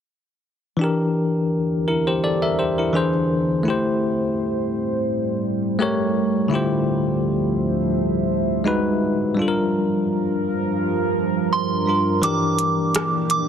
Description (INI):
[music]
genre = contemporary R&B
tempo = 84 BPM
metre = 4/4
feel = swing 54% on 16ths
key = unclear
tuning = A4 = 440 Hz
[part]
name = bell-like tine electric piano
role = accompaniment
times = 0.8-13.5 s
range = D3 to E5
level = -20 LUFS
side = left 2 dB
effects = fast stereo tremolo
[part]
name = deep dark ambient pad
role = sustained chords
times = 1.5-13.5 s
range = D2 to E5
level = -24 LUFS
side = right 3 dB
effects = chorus, built-in reverb
[part]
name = soft synth bell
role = melody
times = 11.5-13.5 s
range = C6 to D6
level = -22 LUFS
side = right 4 dB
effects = chorus, tape echo
[part]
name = minimal click drum kit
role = drums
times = 12.2-13.5 s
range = hi-hat, rim click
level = -24 LUFS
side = right 1 dB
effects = overdrive
[sound]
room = light reverb, digital ambience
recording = dense, heavily limited modern master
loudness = -19 LUFS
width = side -8 dB against mid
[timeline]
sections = 0.8-12.2 A section; 12.2-13.5 B section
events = kick muted 12.2-13.5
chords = 0.8 Em7b5; 2.9 E7b13; 3.7 Am7; 5.8 A7b9; 6.5 Dm11; 8.7 G#m7; 9.4 Gm7; 12.2 Em7b5